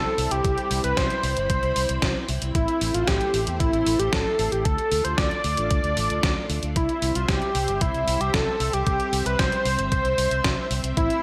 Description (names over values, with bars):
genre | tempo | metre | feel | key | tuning
italo disco | 114 BPM | 4/4 | straight | C major | A4 = 440 Hz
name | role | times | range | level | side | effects
unison lead | melody | 0.0-11.2 s | E4 to D5 | -27 LUFS | equal | tape echo
string machine, full ensemble | sustained chords | 0.0-11.2 s | G3 to B5 | -35 LUFS | equal | ensemble chorus
fingered electric bass with an envelope filter | bass | 0.0-11.1 s | G1 to E2 | -31 LUFS | equal | none
clean 12-bit digital drum machine | drums | 0.2-11.2 s | hi-hat, snare drum | -30 LUFS | equal | gated reverb
electronic kick drum | drums | 0.4-11.1 s | none | -29 LUFS | equal | none
room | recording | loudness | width
light reverb, digital ambience | none | -23 LUFS | mono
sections
0.0-11.2 A section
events
none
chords
0.0 C; 2.6 Am; 4.7 Dm; 6.8 C